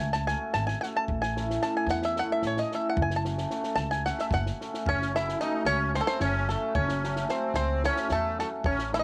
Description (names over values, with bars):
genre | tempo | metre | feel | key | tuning
balkan folk, Balkan wedding band | 223 BPM (eighths) | 7/8 | straight | F# dorian sharp4 | A4 = 444 Hz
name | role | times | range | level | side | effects
bluegrass banjo | melody | 0.0-9.0 s | A4 to A5 | -32 LUFS | equal | none
upright bass | bass | 0.0-9.0 s | F#1 to E2 | -34 LUFS | equal | none
compact cocktail drum kit | percussion | 0.1-9.0 s | kick drum, snare drum | -39 LUFS | equal | none
cimbalom | accompaniment | 0.3-9.0 s | E3 to A4 | -35 LUFS | equal | none
musette accordion | second line | 4.9-9.0 s | A3 to E4 | -35 LUFS | equal | none
room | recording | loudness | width
light reverb, small room reverb | none | -28 LUFS | mono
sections
0.0-4.9 A section; 4.9-9.0 B section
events
five-string banjo solo 0.0-4.9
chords
0.0 F#m; 1.1 A; 3.0 F#m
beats
0.03 0.29 0.56 0.83 | 1.10 1.37 1.64 1.91 2.18 2.44 2.71 | 2.98 3.25 3.52 3.79 4.06 4.33 4.60 | 4.87 5.14 5.41 5.68 5.95 6.22 6.49 | 6.76 7.03 7.30 7.57 7.84 8.11 8.38 | 8.64 8.91